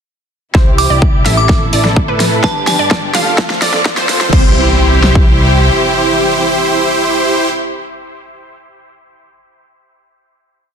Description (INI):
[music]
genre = EDM, festival progressive house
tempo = 127 BPM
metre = 4/4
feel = straight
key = C major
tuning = A4 = 440 Hz
[part]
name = rich studio string section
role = sustained chords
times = 0.5-7.5 s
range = A2 to A4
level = -19 LUFS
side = left 2 dB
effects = sidechain pumping
[part]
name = wide unison pluck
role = arpeggios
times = 0.5-7.5 s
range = B4 to F5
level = -21 LUFS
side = right 1 dB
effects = sidechain pumping, dub echo
[part]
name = supersaw chords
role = riff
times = 0.5-7.5 s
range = D4 to F5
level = -15 LUFS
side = right 1 dB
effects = sidechain pumping, low-pass filter, dub echo
[part]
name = fat analog bass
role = bass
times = 0.5-5.7 s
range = F1 to A2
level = -16 LUFS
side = equal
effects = tube saturation, sidechain pumping
[part]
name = big-room dance drum kit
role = drums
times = 0.5-5.3 s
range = kick drum, snare drum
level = -11 LUFS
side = equal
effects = overdrive
[part]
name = big-room dance drum kit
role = drums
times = 0.5-4.4 s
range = crash cymbal, hi-hat, snare drum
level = -17 LUFS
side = equal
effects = overdrive
[part]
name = riser and impact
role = sound effects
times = 2.9-7.5 s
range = none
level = -24 LUFS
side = equal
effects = none
[part]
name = glassy synth bell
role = melody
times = 0.8-3.3 s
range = A5 to D6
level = -19 LUFS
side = right 1 dB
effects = chorus, phaser, dub echo
[sound]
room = moderate digital room reverb, RT60 1.3 s, digital ambience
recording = dense, heavily limited modern master, high-pass filter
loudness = -9 LUFS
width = side -7 dB against mid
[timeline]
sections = 0.5-4.3 build; 4.3-8.1 final chord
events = build-up 0.5-4.3; drum fill 0.5-4.3; filter sweep on supersaw synth 0.5-4.3; filter sweep 0.5-4.3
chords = 0.5 C; 1.5 Am; 2.4 G; 3.4 F; 4.3 C